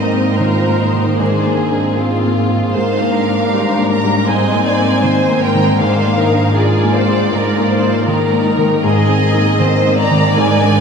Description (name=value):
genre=cinematic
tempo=78 BPM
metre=4/4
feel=rubato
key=Ab lydian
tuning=A4 = 439 Hz
part: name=rich studio violin section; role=melody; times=0.0-10.8 s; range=C5 to Bb5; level=-20 LUFS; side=right 2 dB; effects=none
part: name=rich studio violin section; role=second line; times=0.0-10.8 s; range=F4 to Eb5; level=-19 LUFS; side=equal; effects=none
part: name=dark studio viola section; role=accompaniment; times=0.0-10.8 s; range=Bb3 to C5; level=-20 LUFS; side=left 2 dB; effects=none
part: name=felt-muted upright piano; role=accompaniment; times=0.0-10.8 s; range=Ab2 to Eb4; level=-18 LUFS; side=equal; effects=none
part: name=concert harp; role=arpeggios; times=0.0-10.8 s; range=Ab2 to Eb4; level=-20 LUFS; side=equal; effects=none
part: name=rich studio cello section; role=bass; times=0.0-10.8 s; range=Ab2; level=-19 LUFS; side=equal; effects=none
room=wet cathedral reverb, RT60 6.4 s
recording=in a vast, echoing space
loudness=-12 LUFS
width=side -6 dB against mid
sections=0.0-10.8 A section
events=none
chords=0.0 Abadd9; 1.2 Bb7/Ab; 2.8 Gm7/Ab; 4.3 Abadd9; 5.8 Bb7/Ab; 8.8 Abadd9